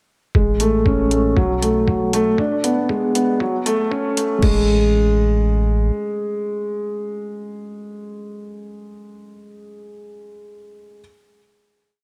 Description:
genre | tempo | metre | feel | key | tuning
piano and strings electronica | 118 BPM | 4/4 | straight | A major | A4 = 440 Hz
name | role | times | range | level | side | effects
warm sub bass | bass | 0.3-5.9 s | E1 to B1 | -23 LUFS | equal | sidechain pumping
electronic kick drum | drums | 0.3-4.5 s | none | -22 LUFS | equal | none
dark grand piano | riff | 0.4-11.0 s | F#3 to D4 | -22 LUFS | equal | tape echo
deep house drum kit | drums | 0.6-4.5 s | crash cymbal, hi-hat | -29 LUFS | equal | overdrive
room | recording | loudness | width
moderate lush hall reverb, RT60 1.9 s, digital ambience | high-pass filter | -19 LUFS | mono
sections
0.4-4.4 build; 4.4-8.5 final chord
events
build-up 0.4-4.4; filter sweep 0.4-4.4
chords
0.4 Amaj7; 1.4 B5; 2.4 E7; 3.4 F#m; 4.4 N.C.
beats
| 0.36 0.86 1.37 1.88 | 2.39 2.90 3.41 3.92 | 4.42 4.93 5.44 5.95 | 6.46 6.97 7.47 7.98

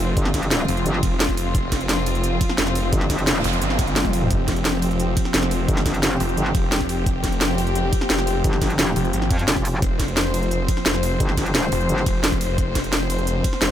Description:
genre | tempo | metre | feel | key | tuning
dark technical drum and bass | 174 BPM | 4/4 | straight | unclear | A4 = 439 Hz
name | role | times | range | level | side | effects
warm chamber string section | sustained chords | 0.0-13.7 s | F3 to C5 | -25 LUFS | left 1 dB | sidechain pumping
snarling distorted saw bass | bass | 0.0-13.7 s | F1 to Ab1 | -24 LUFS | equal | distortion, overdrive
metallic wobble bass | bass | 0.2-3.4, 5.7-12.1 s | F1 to F2 | -22 LUFS | equal | chorus
drum and bass drum kit | drums | 0.2-13.7 s | hi-hat, ride cymbal, snare drum, toms | -23 LUFS | equal | none
electronic kick drum | drums | 0.2-13.5 s | none | -23 LUFS | equal | none
noise sweep | sound effects | 3.1-4.3 s | none | -29 LUFS | right 3 dB | none
room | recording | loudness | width
little or no reverb | none | -18 LUFS | side -10 dB against mid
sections
0.0-13.7 A section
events
noise sweep 3.1-4.3; drum fill 4.0-4.3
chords
0.0 F5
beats
| 0.17 0.51 0.86 1.20 | 1.55 1.89 2.24 2.58 | 2.93 3.27 3.62 3.96 | 4.31 4.65 5.00 5.34 | 5.68 6.03 6.38 6.72 | 7.06 7.41 7.75 8.10 | 8.44 8.79 9.13 9.48 | 9.82 10.17 10.51 10.86 | 11.20 11.55 11.89 12.24 | 12.58 12.93 13.27 13.62

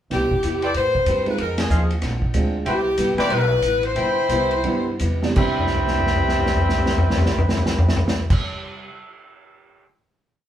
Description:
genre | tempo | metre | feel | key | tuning
jazz, big band swing | 160-189 BPM | 4/4 | swing 62% on 8ths | C major | A4 = 439 Hz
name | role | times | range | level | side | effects
clear saxophone section | melody | 0.1-8.3 s | G3 to D5 | -23 LUFS | left 2 dB | none
dark upright piano | accompaniment | 0.1-8.4 s | C3 to G4 | -29 LUFS | right 5 dB | none
picked plugged-in steel-string acoustic guitar | accompaniment | 0.1-8.9 s | Bb2 to B4 | -29 LUFS | left 2 dB | none
upright bass | bass | 0.1-8.3 s | G1 to A2 | -25 LUFS | right 1 dB | none
vintage drum kit | drums | 0.1-9.8 s | crash cymbal, hi-hat, kick drum, ride cymbal, snare drum, toms | -22 LUFS | equal | none
warm trumpet section | stabs | 0.6-8.4 s | C4 to B5 | -24 LUFS | equal | none
room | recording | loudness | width
wet studio reverb, RT60 0.6 s | band playing live in one room | -18 LUFS | side -10 dB against mid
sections
0.1-5.4 A section; 5.4-8.4 final chord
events
band accent 1.5; slowing down 2.7-5.4; drum fill 5.6-8.3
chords
0.1 Cmaj7; 0.8 Am9; 1.4 Fm7; 2.0 Bb9; 2.7 Cmaj7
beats
| 0.11 0.43 0.75 1.07 | 1.39 1.70 2.02 2.34 | 2.66 2.98 3.30 3.62 | 3.96 4.29 4.64 5.00 | 5.37 5.74 6.12 6.49 | 6.87 7.24 7.62 8.00

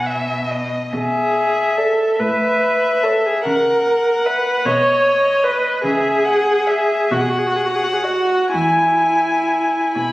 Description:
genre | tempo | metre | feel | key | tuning
classical, slow romantic movement for string quartet | 40-51 BPM (dotted quarters) | 6/8 | rubato | E major | A4 = 440 Hz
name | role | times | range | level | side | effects
muted violin | melody | 0.0-10.1 s | D#5 to G#5 | -20 LUFS | left 2 dB | none
muted violin | second line | 0.0-10.1 s | C#5 to B5 | -27 LUFS | equal | none
muted cello | bass | 0.0-10.1 s | E2 to C#3 | -26 LUFS | equal | none
muted viola | accompaniment | 0.9-10.1 s | E4 to C#5 | -16 LUFS | right 1 dB | none
room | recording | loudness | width
moderate recital hall reverb, RT60 1.3 s | recorded on a phone in the room, studio reverb, compression | -15 LUFS | side -17 dB against mid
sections
0.0-10.1 A section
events
none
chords
0.0 B; 0.9 E7/B; 2.2 A; 3.5 F#7/C#; 4.7 B; 5.8 C#m; 7.1 B; 8.5 E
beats
| 0.93 2.20 | 3.46 4.66 | 5.84 7.12 | 8.54 9.96

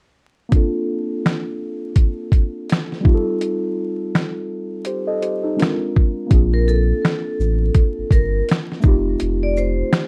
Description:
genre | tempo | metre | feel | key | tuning
lo-fi hip hop | 83 BPM | 4/4 | swing 60% on 16ths | Bb major | A4 = 439 Hz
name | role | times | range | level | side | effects
muted felt-like synth keys | accompaniment | 0.5-10.1 s | G3 to Eb5 | -25 LUFS | equal | chorus, cassette tape, low-pass filter
boom bap sampler-style drum kit | drums | 0.5-10.1 s | finger snaps, hi-hat, kick drum, shaker, snare drum | -18 LUFS | equal | none
warm sub bass | bass | 6.3-9.8 s | F1 to Bb1 | -21 LUFS | equal | none
vibraphone with hard mallets | melody | 6.5-10.1 s | A4 to D5 | -27 LUFS | equal | low-pass filter
room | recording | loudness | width
light reverb | dark, warm production, vinyl crackle | -19 LUFS | mono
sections
0.5-6.3 A section; 6.3-10.1 B section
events
filter sweep on synth keys 0.5-6.3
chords
0.5 Bbmaj7; 3.1 F7; 5.6 Bb7; 6.3 Bbmaj7; 8.8 F7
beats
| 0.53 1.25 1.97 2.69 | 3.42 4.14 4.86 5.58 | 6.31 7.03 7.75 8.48 | 9.20 9.92

